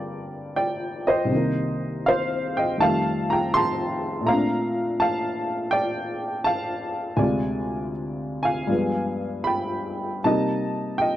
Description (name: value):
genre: solo jazz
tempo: 80 BPM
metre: 4/4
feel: swing 66% on 8ths, rubato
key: G minor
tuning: A4 = 439 Hz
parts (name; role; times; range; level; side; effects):
- warm upright piano; solo; 0.0-11.2 s; C2 to C6; -22 LUFS; equal; none
room: light reverb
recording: dry, close 1970s-style studio recording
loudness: -22 LUFS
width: side -13 dB against mid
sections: 0.0-11.2 A section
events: none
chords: 0.0 Gm11; 1.3 Cm7; 2.8 F9; 4.3 Bbmaj9; 7.2 Dm7b5; 8.7 G7b9; 10.2 Cm7